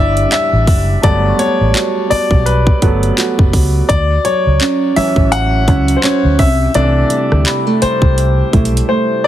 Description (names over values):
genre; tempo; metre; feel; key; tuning
contemporary R&B; 84 BPM; 4/4; swing 58% on 16ths; D major; A4 = 440 Hz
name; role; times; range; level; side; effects
clear grand piano; accompaniment; 0.0-9.3 s; D3 to F#5; -15 LUFS; left 2 dB; none
nylon-string guitar; arpeggios; 0.0-9.3 s; A2 to A4; -18 LUFS; right 3 dB; ping-pong delay
vintage muted fingered electric bass; bass; 0.0-8.8 s; F#1 to D2; -14 LUFS; equal; none
large celesta; texture; 0.0-2.8, 7.5-9.0 s; A5 to D6; -27 LUFS; left 2 dB; ping-pong delay
trap drum kit; drums; 0.2-8.9 s; handclaps, hi-hat, kick drum, rim click; -14 LUFS; equal; none
room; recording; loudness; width
small room ambience; heavily compressed radio sound, multiband compression; -10 LUFS; side -12 dB against mid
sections
0.0-9.3 A section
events
grand piano solo 0.0-9.3; silent gap 8.9-9.3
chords
0.0 A7sus4; 1.0 Gmaj9; 3.9 Dmaj9; 6.4 C6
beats
0.32 | 1.03 1.75 2.46 3.18 | 3.89 4.60 5.32 6.03 | 6.75 7.46 8.18 8.89